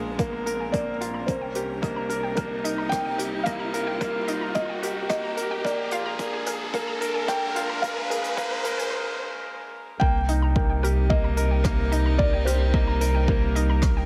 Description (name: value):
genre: piano and strings electronica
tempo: 110 BPM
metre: 4/4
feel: straight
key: C minor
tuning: A4 = 440 Hz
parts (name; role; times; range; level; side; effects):
- warm string quartet; sustained chords; 0.0-14.1 s; Bb2 to Bb4; -38 LUFS; equal; none
- felt-muted upright piano; riff; 0.0-14.1 s; Bb3 to Bb4; -32 LUFS; equal; none
- warm sub bass; bass; 0.0-14.1 s; Bb1 to C2; -28 LUFS; equal; sidechain pumping
- riser; sound effects; 0.1-8.9 s; none; -35 LUFS; equal; none
- felt-muted upright piano; melody; 0.2-13.5 s; Bb4 to G5; -33 LUFS; equal; none
- warbly dusty pluck; arpeggios; 0.2-14.0 s; Bb4 to Bb5; -38 LUFS; equal; chorus, sidechain pumping, digital delay
- electronic kick drum; drums; 0.2-13.9 s; none; -27 LUFS; equal; overdrive
- soft brush drum kit; drums; 0.2-13.9 s; hi-hat, rim click; -39 LUFS; equal; none
room: moderate lush hall reverb, RT60 2.1 s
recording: high-pass filter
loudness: -25 LUFS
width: mono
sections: 0.0-10.0 A section; 10.0-14.1 B section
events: build-up 0.0-10.0; filter sweep 0.0-10.0; riser 0.1-8.9; break 8.9-10.0; drop 10.0-14.1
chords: 0.0 Bb7; 1.3 Cm7; 5.6 Bb7; 10.0 Cm7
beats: 0.19 0.74 | 1.28 1.83 2.38 2.92 | 3.47 4.01 4.56 5.10 | 5.65 6.19 6.74 7.28 | 7.83 8.38 8.92 9.47 | 10.01 10.56 11.10 11.65 | 12.19 12.74 13.28 13.83